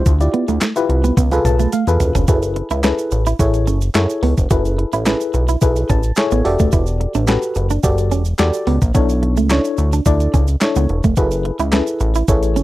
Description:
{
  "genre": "early-eighties boogie funk",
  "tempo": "108 BPM",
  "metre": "4/4",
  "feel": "straight",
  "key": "F# minor",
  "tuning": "A4 = 440 Hz",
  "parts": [
    { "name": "FM electric piano with auto-pan", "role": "accompaniment", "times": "0.0-12.6 s", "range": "D4 to A5", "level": "-20 LUFS", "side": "left 2 dB", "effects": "none" },
    { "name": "clean electric guitar", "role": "riff", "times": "0.0-12.6 s", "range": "A3 to F#4", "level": "-21 LUFS", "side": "right 5 dB", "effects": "analog chorus" },
    { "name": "chorused synth bass", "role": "bass", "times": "0.0-12.6 s", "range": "D#1 to F#2", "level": "-17 LUFS", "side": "equal", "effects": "none" },
    { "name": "detuned 8-bit digital drum machine", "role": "drums", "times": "0.1-12.6 s", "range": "handclaps, hi-hat, kick drum, snare drum, toms", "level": "-17 LUFS", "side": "equal", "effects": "overdrive" },
    { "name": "tube shaker", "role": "percussion", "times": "0.1-12.6 s", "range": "none", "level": "-34 LUFS", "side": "right 10 dB", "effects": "none" }
  ],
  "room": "little or no reverb",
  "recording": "dry, close 1970s-style studio recording",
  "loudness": "-14 LUFS",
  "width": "side -16 dB against mid",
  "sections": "0.0-2.3 A section; 2.3-12.6 B section",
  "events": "drum fill 1.2-2.3; FM electric piano fill 1.2-2.3, 5.6-6.7",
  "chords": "0.0 Dm11; 1.2 C#7b13; 2.3 F#m11; 6.5 Em11; 8.9 Bm11; 11.2 F#m11",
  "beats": "| 0.06 0.62 1.17 1.73 | 2.28 2.84 3.40 3.95 | 4.51 5.06 5.62 6.17 | 6.73 7.28 7.84 8.39 | 8.95 9.51 10.06 10.62 | 11.17 11.73 12.28"
}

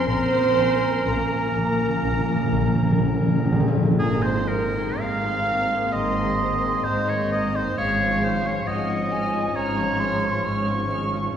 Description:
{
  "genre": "cinematic, emotional film score for orchestra",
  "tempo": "58-68 BPM",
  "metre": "4/4",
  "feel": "rubato",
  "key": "unclear",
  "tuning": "A4 = 436 Hz",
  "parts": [
    { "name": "muted symphonic violin section", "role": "melody", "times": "0.0-11.4 s", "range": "Bb5 to F6", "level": "-37 LUFS", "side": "left 3 dB", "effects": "none" },
    { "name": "clear clarinet", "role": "second line", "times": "0.0-3.6 s", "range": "Db4", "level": "-33 LUFS", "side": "right 2 dB", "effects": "none" },
    { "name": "clear oboe", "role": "second line", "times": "0.0-10.9 s", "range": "Ab4 to F5", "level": "-27 LUFS", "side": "right 1 dB", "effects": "none" },
    { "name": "muted symphonic violin section", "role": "second line", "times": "0.0-10.9 s", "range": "Ab4 to F5", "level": "-33 LUFS", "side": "left 1 dB", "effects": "none" },
    { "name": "silver concert flute", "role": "second line", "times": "0.0-11.4 s", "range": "Eb5 to Db6", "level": "-30 LUFS", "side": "left 1 dB", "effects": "none" },
    { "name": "muted symphonic viola section", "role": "accompaniment", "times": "0.0-11.4 s", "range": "Eb3 to Bb4", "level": "-34 LUFS", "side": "equal", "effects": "none" },
    { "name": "mellow French horn section", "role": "sustained chords", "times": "0.0-11.4 s", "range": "F3 to C5", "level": "-29 LUFS", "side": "right 2 dB", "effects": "none" },
    { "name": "concert harp", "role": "arpeggios", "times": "0.0-11.4 s", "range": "F2 to C5", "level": "-32 LUFS", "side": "left 5 dB", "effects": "none" },
    { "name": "muted symphonic cello section", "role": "bass", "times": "0.0-11.2 s", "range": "Ab2 to C4", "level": "-30 LUFS", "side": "right 1 dB", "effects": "none" },
    { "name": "muted studio double bass section", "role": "bass", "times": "0.1-11.2 s", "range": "Ab1 to Bb1", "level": "-30 LUFS", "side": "right 1 dB", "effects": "none" },
    { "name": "timpani", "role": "percussion", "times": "0.1-4.0 s", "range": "Bb2", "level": "-23 LUFS", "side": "equal", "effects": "none" }
  ],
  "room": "wet scoring stage reverb, RT60 1.8 s",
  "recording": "heard from further back in the room",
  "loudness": "-20 LUFS",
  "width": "side -8 dB against mid",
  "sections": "0.0-4.0 A section; 4.0-11.4 A section",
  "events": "timpani fill 0.1-4.0",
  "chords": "0.1 Bbm; 4.0 Abadd9; 7.8 Db/Ab",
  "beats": "| 0.07 1.07 2.05 3.02 | 3.99 5.00 5.92 6.85 | 7.76 8.65 9.54 10.44 | 11.36"
}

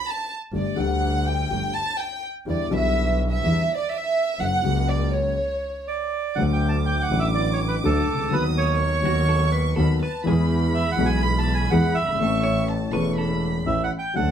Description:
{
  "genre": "tango",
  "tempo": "124 BPM",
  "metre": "4/4",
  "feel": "rubato",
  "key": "D major from 6.4 s",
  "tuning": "A4 = 441 Hz",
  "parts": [
    { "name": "warm chamber violin section", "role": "second line", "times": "0.0-14.3 s", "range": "C#5 to D#6", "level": "-27 LUFS", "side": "right 2 dB", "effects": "none" },
    { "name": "dark concert grand piano", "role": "accompaniment", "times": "0.5-14.3 s", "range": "E1 to A4", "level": "-25 LUFS", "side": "left 4 dB", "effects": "none" },
    { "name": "clear double bass", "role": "bass", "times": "0.5-14.3 s", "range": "E1 to E2", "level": "-24 LUFS", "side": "right 1 dB", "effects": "none" },
    { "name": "bandoneon", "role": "melody", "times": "5.9-14.3 s", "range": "A4 to B5", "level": "-25 LUFS", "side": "right 4 dB", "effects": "none" },
    { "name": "vintage hollow-body jazz guitar", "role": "second line", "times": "9.1-13.5 s", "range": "F#4 to C#5", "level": "-31 LUFS", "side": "equal", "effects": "none" }
  ],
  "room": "moderate studio reverb, RT60 0.6 s",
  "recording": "heard from further back in the room",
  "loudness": "-20 LUFS",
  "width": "side -9 dB against mid",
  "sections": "0.0-6.4 A section; 6.4-14.3 B section",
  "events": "violin section solo 0.0-6.4; stop 5.4-6.4",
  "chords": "0.0 N.C.; 0.5 Gsus2; 2.5 Em7; 4.4 F#; 5.4 N.C.; 6.4 D; 8.3 B/D#; 10.3 E; 12.2 A",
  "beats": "0.05 | 0.54 1.02 1.50 1.99 | 2.47 2.95 3.43 3.91 | 4.40 4.88 5.37 5.87 | 6.37 6.86 7.35 7.84 | 8.32 8.81 9.30 9.78 | 10.27 10.75 11.24 11.72 | 12.20 12.69 13.17 13.66 | 14.16"
}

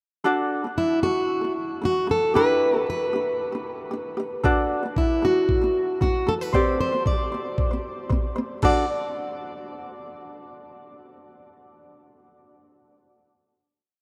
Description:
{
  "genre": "acoustic pop",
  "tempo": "114 BPM",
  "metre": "4/4",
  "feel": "straight",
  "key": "D mixolydian",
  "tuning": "A4 = 440 Hz",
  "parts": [
    { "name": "ukulele", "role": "accompaniment", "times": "0.2-8.8 s", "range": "C4 to D5", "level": "-29 LUFS", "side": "equal", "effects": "none" },
    { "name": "fingerpicked plugged-in steel-string acoustic guitar", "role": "melody", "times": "0.8-8.9 s", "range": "E4 to D5", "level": "-26 LUFS", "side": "equal", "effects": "none" },
    { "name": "breakbeat sampler-style drum kit", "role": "drums", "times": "4.4-8.8 s", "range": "crash cymbal, kick drum", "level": "-27 LUFS", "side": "equal", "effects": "none" }
  ],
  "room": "wet huge ambient reverb, RT60 8.1 s",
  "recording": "in a vast, echoing space",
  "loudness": "-24 LUFS",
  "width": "mono",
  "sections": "0.2-8.6 verse; 8.6-10.7 final chord",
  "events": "none",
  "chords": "0.2 D; 2.3 G6; 4.4 D; 6.5 Csus2; 8.6 D",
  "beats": "| 0.25 0.77 1.30 1.82 | 2.35 2.87 3.39 3.92 | 4.44 4.96 5.49 6.01 | 6.54 7.06 7.58 8.11 | 8.63"
}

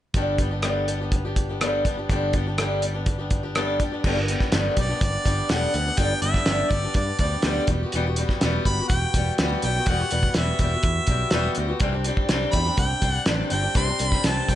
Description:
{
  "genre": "folk rock and heartland rock",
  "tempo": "124 BPM",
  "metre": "4/4",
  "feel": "straight",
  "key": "G major",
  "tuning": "A4 = 440 Hz",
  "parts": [
    { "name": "picked swing-style acoustic guitar", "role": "accompaniment", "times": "0.1-14.6 s", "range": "G2 to G4", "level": "-26 LUFS", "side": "left 2 dB", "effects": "none" },
    { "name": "picked electric bass", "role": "bass", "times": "0.1-14.6 s", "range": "E1 to G2", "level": "-27 LUFS", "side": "equal", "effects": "none" },
    { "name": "cloth-damped thuddy drum kit", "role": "drums", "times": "0.1-14.6 s", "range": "crash cymbal, hi-hat, kick drum, rim click, snare drum", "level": "-25 LUFS", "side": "equal", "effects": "none" },
    { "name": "bright harmonica", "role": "melody", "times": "4.8-14.6 s", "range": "D5 to C6", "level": "-27 LUFS", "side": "equal", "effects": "slapback echo" }
  ],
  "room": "light reverb",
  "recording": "nothing above 10.7 kHz",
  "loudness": "-20 LUFS",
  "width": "side -12 dB against mid",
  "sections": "0.1-4.0 A section; 4.0-14.6 B section",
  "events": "none",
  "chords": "0.1 G; 7.7 Emadd9; 11.8 Cadd9",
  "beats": "| 0.14 0.63 1.12 1.61 | 2.10 2.59 3.07 3.56 | 4.05 4.53 5.02 5.51 | 5.99 6.48 6.96 7.45 | 7.93 8.42 8.90 9.39 | 9.87 10.36 10.84 11.33 | 11.81 12.30 12.78 13.27 | 13.76 14.24"
}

